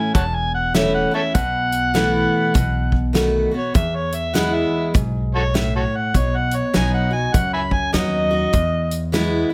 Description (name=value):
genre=honky-tonk and classic country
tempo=100 BPM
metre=4/4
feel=swing 62% on 8ths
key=E major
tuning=A4 = 440 Hz
part: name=overdriven harmonica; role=second line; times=0.0-9.1 s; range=F#4 to B5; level=-24 LUFS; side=equal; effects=none
part: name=picked steel-string acoustic guitar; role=accompaniment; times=0.0-9.5 s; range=E2 to F#4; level=-24 LUFS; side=equal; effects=none
part: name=upright bass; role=bass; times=0.1-9.4 s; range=E1 to E2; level=-27 LUFS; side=equal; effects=none
part: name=natural country drum kit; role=drums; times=0.1-9.3 s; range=hi-hat, kick drum, snare drum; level=-22 LUFS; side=equal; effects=none
room=moderate studio reverb, RT60 0.7 s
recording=none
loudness=-19 LUFS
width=mono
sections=0.0-9.5 A section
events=harmonica solo 0.0-9.5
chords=0.0 A; 1.4 B7sus4; 2.6 B7; 3.8 E; 6.1 B; 8.5 E